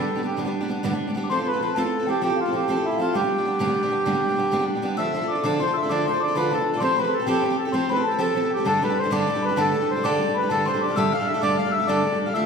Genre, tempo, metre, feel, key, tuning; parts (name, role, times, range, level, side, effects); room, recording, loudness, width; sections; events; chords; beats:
celtic folk, Celtic slide; 130 BPM (dotted quarters); 12/8; straight; G mixolydian; A4 = 441 Hz
accordion; melody; 0.0-12.5 s; E4 to F5; -24 LUFS; right 1 dB
small celesta; second line; 0.0-12.5 s; F5 to F6; -29 LUFS; left 5 dB
fingerpicked steel-string acoustic guitar; accompaniment; 0.0-12.5 s; G2 to A4; -24 LUFS; right 1 dB
wet recital hall reverb, RT60 1.5 s; recorded in a church or concert hall; -20 LUFS; side -6 dB against mid
0.0-5.0 A section; 5.0-12.5 B section
0.0 G; 1.3 F; 3.1 G; 5.0 Dm; 6.8 Fadd9; 8.7 Gsus2
0.38 0.84 | 1.30 1.76 2.22 2.68 | 3.14 3.60 4.06 4.52 | 4.98 5.44 5.89 6.35 | 6.81 7.27 7.73 8.19 | 8.65 9.11 9.57 10.03 | 10.49 10.95 11.41 11.88 | 12.34